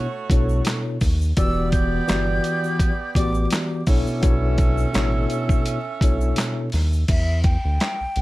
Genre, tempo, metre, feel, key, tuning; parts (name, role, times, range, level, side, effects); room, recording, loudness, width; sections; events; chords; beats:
hip hop, boom-bap hip-hop; 84 BPM; 4/4; swing 55% on 16ths; E dorian; A4 = 440 Hz
mellow tine electric piano; accompaniment; 0.0-6.7 s; B2 to D5; -24 LUFS; left 1 dB; medium stereo tremolo, cassette tape
bright saxophone section; stabs; 0.0-6.7 s; A3 to E5; -31 LUFS; right 6 dB; tape echo
round analog bass; bass; 0.3-8.2 s; E1 to E2; -22 LUFS; equal
boom bap sampler-style drum kit; drums; 0.3-8.2 s; crash cymbal, handclaps, hi-hat, kick drum, snare drum; -21 LUFS; equal
tube shaker; percussion; 0.3-7.1 s; -45 LUFS; left 12 dB
breathy hollow jazz flute; melody; 1.4-8.2 s; E5 to G6; -28 LUFS; equal
light reverb; vinyl crackle; -18 LUFS; side -18 dB against mid
0.0-7.1 A section; 7.1-8.2 B section
0.0 Bm11; 1.4 Em7; 3.9 Bm11; 7.1 Em7
0.66 | 1.37 2.08 2.80 3.51 | 4.23 4.94 5.66 6.37 | 7.08 7.80